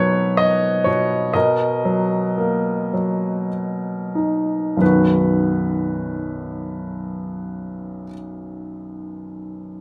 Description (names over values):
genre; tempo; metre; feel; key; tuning
classical, lyrical solo piano; 29-44 BPM (dotted quarters); 6/8; rubato; B major; A4 = 441 Hz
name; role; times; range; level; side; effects
clear baby grand piano; solo; 0.0-9.8 s; B1 to D#5; -21 LUFS; equal; none
room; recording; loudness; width
moderate studio reverb, RT60 0.6 s; none; -20 LUFS; mono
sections
0.0-4.8 A section; 4.8-8.9 B section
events
slowing down 0.0-4.8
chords
0.0 Bmaj7; 4.8 B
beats
| 1.35 2.93 | 4.81 6.86